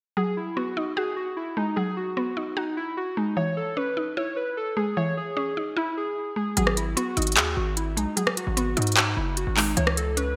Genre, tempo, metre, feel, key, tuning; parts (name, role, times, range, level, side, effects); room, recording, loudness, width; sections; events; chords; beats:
hip hop, trap; 150 BPM; 4/4; half-time; G# minor; A4 = 440 Hz
warbly lo-fi synth keys; melody; 0.2-10.4 s; D#4 to C#5; -31 LUFS; equal; chorus
mallet-like synth pluck; accompaniment; 0.2-10.4 s; E3 to F#4; -31 LUFS; equal; chorus
distorted 808-style bass; bass; 6.6-10.3 s; F#1 to G#2; -30 LUFS; equal; distortion
trap drum kit; drums; 6.6-10.3 s; handclaps, hi-hat, rim click; -26 LUFS; equal; gated reverb
moderate lush hall reverb, RT60 1.8 s, digital ambience; bright 1980s-style digital production; -26 LUFS; mono
0.2-10.4 A section
0.2 G#m7; 3.4 C#madd9; 6.6 G#m7; 9.8 C#m
| 0.17 0.57 0.97 1.37 | 1.77 2.17 2.57 2.97 | 3.37 3.77 4.17 4.57 | 4.97 5.37 5.77 6.17 | 6.57 6.97 7.37 7.77 | 8.17 8.57 8.97 9.37 | 9.77 10.17